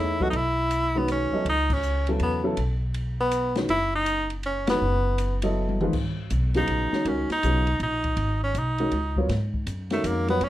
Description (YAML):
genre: modal jazz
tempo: 161 BPM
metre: 3/4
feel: swing 65% on 8ths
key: F# dorian, G# dorian from 5.9 s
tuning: A4 = 441 Hz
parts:
  - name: clear tenor saxophone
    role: melody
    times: 0.0-10.5 s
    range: A3 to F#4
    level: -25 LUFS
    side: equal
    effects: none
  - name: warm baby grand piano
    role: accompaniment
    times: 0.0-10.4 s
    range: C#3 to D#5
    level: -27 LUFS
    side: equal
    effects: none
  - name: upright bass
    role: bass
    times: 0.0-10.5 s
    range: F#1 to G#2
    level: -27 LUFS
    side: equal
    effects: none
  - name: open jazz drum kit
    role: drums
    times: 0.2-10.5 s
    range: crash cymbal, hi-hat, kick drum, ride cymbal, snare drum, toms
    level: -32 LUFS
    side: left 1 dB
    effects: none
room: moderate small room reverb, RT60 0.5 s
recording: none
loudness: -22 LUFS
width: side -14 dB against mid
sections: 0.0-5.9 A section; 5.9-10.5 B section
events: band accent 1.6, 4.6; drum fill 5.6-5.9; tenor saxophone solo 5.9-10.5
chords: 0.0 F#9sus4; 5.9 G#9sus4